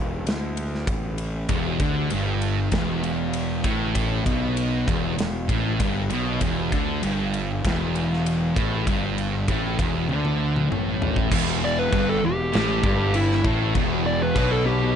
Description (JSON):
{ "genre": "stoner and doom metal", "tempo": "98 BPM", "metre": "4/4", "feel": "straight", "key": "E minor", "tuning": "A4 = 440 Hz", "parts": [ { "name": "fuzz fingered electric bass", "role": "bass", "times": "0.0-14.9 s", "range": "E1 to D2", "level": "-28 LUFS", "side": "equal", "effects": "overdrive" }, { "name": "big rock drum kit", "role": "drums", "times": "0.3-14.5 s", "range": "crash cymbal, kick drum, ride cymbal, snare drum, toms", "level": "-27 LUFS", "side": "equal", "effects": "none" }, { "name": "thick fuzz guitar", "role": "riff", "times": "1.5-15.0 s", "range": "E2 to D3", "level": "-27 LUFS", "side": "left 9 dB", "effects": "distortion" }, { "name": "thick fuzz guitar", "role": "riff", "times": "1.5-14.9 s", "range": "E2 to D3", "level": "-27 LUFS", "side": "right 9 dB", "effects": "distortion" }, { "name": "distorted electric guitar", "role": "riff", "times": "11.3-14.9 s", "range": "E2 to B2", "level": "-30 LUFS", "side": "equal", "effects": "overdrive" }, { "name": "fuzz lead guitar", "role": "melody", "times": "11.6-15.0 s", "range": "E4 to D5", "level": "-25 LUFS", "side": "equal", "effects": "distortion, tape echo" } ], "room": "light reverb", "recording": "nothing above 10.4 kHz", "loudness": "-21 LUFS", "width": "side -8 dB against mid", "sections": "0.0-11.3 A section; 11.3-15.0 B section", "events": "drum fill 10.1-11.3; lead electric guitar solo 11.3-15.0", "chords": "0.0 Em" }